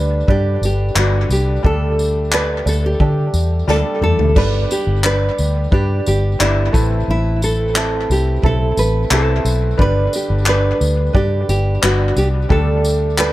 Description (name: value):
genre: acoustic pop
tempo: 88 BPM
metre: 4/4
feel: straight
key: G major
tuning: A4 = 440 Hz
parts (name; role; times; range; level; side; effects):
- nylon-string guitar; melody; 0.0-13.3 s; E4 to B4; -20 LUFS; right 1 dB; tape echo
- bright grand piano; accompaniment; 0.0-13.3 s; G3 to B4; -28 LUFS; left 7 dB; tape echo
- tenor ukulele; accompaniment; 0.0-13.3 s; C4 to D5; -24 LUFS; right 5 dB; tape echo
- pedal harmonium; sustained chords; 0.0-13.3 s; D3 to B4; -29 LUFS; equal; none
- vintage muted fingered electric bass; bass; 0.0-13.3 s; G1 to D3; -17 LUFS; equal; none
- unplugged drum kit; drums; 0.3-13.3 s; crash cymbal, handclaps, kick drum, snare drum, tambourine, toms; -19 LUFS; left 1 dB; none
room: small room ambience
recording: echo-heavy mix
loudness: -14 LUFS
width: side -16 dB against mid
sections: 0.0-4.4 A section; 4.4-13.3 A section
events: drum fill 3.7-4.4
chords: 0.0 G; 1.6 Dsus4; 4.4 G; 6.7 Amadd9; 9.8 G; 12.5 Dsus4